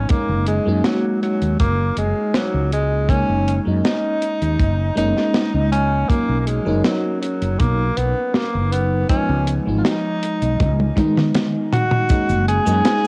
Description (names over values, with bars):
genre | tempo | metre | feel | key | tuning
vaporwave | 80 BPM | 4/4 | straight | F# major | A4 = 441 Hz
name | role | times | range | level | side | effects
mellow tenor saxophone | melody | 0.0-13.1 s | F#3 to G#4 | -24 LUFS | equal | vintage 12-bit sampler grit, cassette tape, tape echo
FM electric piano with soft pad layer | accompaniment | 0.0-13.1 s | D#3 to A#4 | -25 LUFS | equal | phaser, subtle chorus, cassette tape
mellow fretless electric bass | bass | 0.0-12.8 s | F#1 to F#2 | -22 LUFS | equal | none
kick drum | drums | 0.1-12.3 s | none | -21 LUFS | equal | studio reverb
tight funk drum kit | drums | 0.1-13.1 s | cabasa, hi-hat, snare drum, toms | -25 LUFS | equal | studio reverb
room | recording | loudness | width
moderate spring reverb, RT60 2.4 s | home recording on cassette | -19 LUFS | mono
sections
0.0-12.1 A section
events
drum fill 10.6-12.1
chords
0.1 F#69; 6.1 Bmaj9; 9.1 C#9; 12.1 F#69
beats
| 0.10 0.85 1.60 2.35 | 3.10 3.85 4.60 5.35 | 6.10 6.85 7.60 8.35 | 9.10 9.85 10.60 11.35 | 12.10 12.85